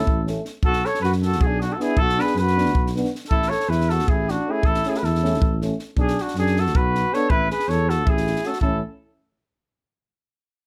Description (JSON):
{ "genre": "balkan folk, Balkan brass band", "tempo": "316 BPM (eighths)", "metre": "7/8", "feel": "straight", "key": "A major", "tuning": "A4 = 439 Hz", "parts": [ { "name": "warm cornet", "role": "melody", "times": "0.0-8.8 s", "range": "F#4 to C#5", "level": "-27 LUFS", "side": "equal", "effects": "none" }, { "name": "mellow flugelhorn", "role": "second line", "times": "0.0-8.8 s", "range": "D4 to A4", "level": "-30 LUFS", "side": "equal", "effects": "none" }, { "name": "warm euphonium", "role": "accompaniment", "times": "0.0-8.8 s", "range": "C#4 to D4", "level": "-32 LUFS", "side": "equal", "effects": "none" }, { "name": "warm euphonium", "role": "accompaniment", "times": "0.0-8.8 s", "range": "A3 to B3", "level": "-32 LUFS", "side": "equal", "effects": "none" }, { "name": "dark tuba", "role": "bass", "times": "0.0-8.8 s", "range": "A1 to F#2", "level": "-26 LUFS", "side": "equal", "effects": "none" }, { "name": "compact cocktail drum kit", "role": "percussion", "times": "0.1-8.8 s", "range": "kick drum, snare drum", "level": "-26 LUFS", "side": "equal", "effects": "none" } ], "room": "light reverb", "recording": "close, detailed microphones", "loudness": "-21 LUFS", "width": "mono", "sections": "0.0-8.6 A section; 8.6-9.9 B section", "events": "none", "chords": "0.0 A; 0.6 Bm; 3.3 A; 6.0 Bm; 7.3 A5; 8.6 A" }